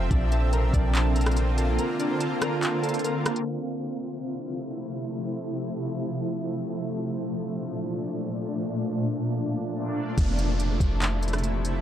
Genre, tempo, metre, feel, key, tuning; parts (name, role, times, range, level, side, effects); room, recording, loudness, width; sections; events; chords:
hip hop, atmospheric cloud-rap; 143 BPM; 4/4; half-time; F major; A4 = 440 Hz
shimmering ambient pad; sustained chords; 0.0-11.8 s; Bb2 to F4; -28 LUFS; equal; chorus, built-in reverb, sidechain pumping
glassy digital keys; arpeggios; 0.0-3.5 s; D4 to Bb4; -32 LUFS; left 2 dB; chorus, low-pass filter, tape echo
warm 808-style bass; bass; 0.0-1.8, 10.2-11.8 s; F1 to Bb1; -24 LUFS; equal
smooth R&B drum kit; drums; 0.1-3.5, 10.2-11.7 s; handclaps, hi-hat, kick drum, rim click; -28 LUFS; equal
downlifter; sound effects; 10.2-11.8 s; -37 LUFS; right 3 dB
digital ambience; dark, warm production, low-pass filter; -25 LUFS; side -10 dB against mid
0.0-3.5 A section; 3.5-10.2 B section; 10.2-11.8 C section
break 1.8-3.5; filter sweep 3.5-10.2
0.1 Bbmaj7; 3.5 Fmaj7; 6.8 Bbmaj7; 10.2 Fmaj7